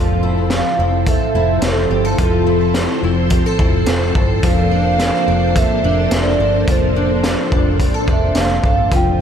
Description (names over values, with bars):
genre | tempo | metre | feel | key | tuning
dream pop | 107 BPM | 4/4 | straight | unclear | A4 = 439 Hz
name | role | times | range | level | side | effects
hollow clarinet-like synth lead | melody | 0.0-9.2 s | A4 to G5 | -20 LUFS | right 4 dB | chorus, digital delay
string machine, violins | sustained chords | 0.0-9.2 s | F3 to C5 | -20 LUFS | equal | ensemble chorus
picked twelve-string acoustic guitar | arpeggios | 0.0-9.2 s | F3 to A4 | -21 LUFS | left 4 dB | analog chorus, digital delay
vintage muted fingered electric bass | bass | 0.0-9.2 s | F1 to G1 | -19 LUFS | equal | none
raw garage drum kit | drums | 0.5-9.0 s | hi-hat, kick drum, snare drum | -19 LUFS | equal | none
room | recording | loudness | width
light reverb, studio reverb | none | -13 LUFS | side -8 dB against mid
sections
0.0-9.2 A section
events
none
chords
0.0 Fmaj7; 4.4 Bbmaj9/F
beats
0.51 1.07 1.63 | 2.19 2.75 3.31 3.87 | 4.43 4.99 5.55 6.11 | 6.67 7.24 7.80 8.36 | 8.92